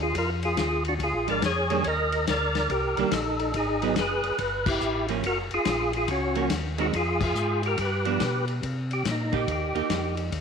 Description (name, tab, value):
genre	soul jazz organ trio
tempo	142 BPM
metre	4/4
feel	swing 65% on 8ths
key	Eb major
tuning	A4 = 436 Hz
part	percussive tonewheel organ	melody	0.0-10.2 s	Db4 to Eb5	-26 LUFS	equal	slow rotary speaker, overdrive, chorus vibrato, slapback echo
part	mellow tonewheel organ	bass	0.0-10.4 s	Gb1 to C3	-31 LUFS	equal	slow rotary speaker
part	vintage drum kit	drums	0.1-10.4 s	crash cymbal, hi-hat, kick drum, ride cymbal, snare drum	-32 LUFS	left 6 dB	none
part	vintage hollow-body jazz guitar	accompaniment	1.3-10.3 s	Eb3 to G4	-31 LUFS	right 11 dB	none
room	moderate echo chamber reverb, RT60 1.4 s, small room reverb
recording	1960s-style stereo with parts hard left and right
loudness	-24 LUFS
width	side -6 dB against mid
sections	0.0-8.6 A section; 8.6-10.4 B section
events	band accent 4.6, 7.1; tonewheel organ solo 8.6-10.4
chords	0.2 Bb7; 1.9 Ebmaj7; 3.5 Abm7; 4.4 Gsus2; 5.2 Gbmaj7; 6.9 Fm; 7.8 G7; 8.6 Cm7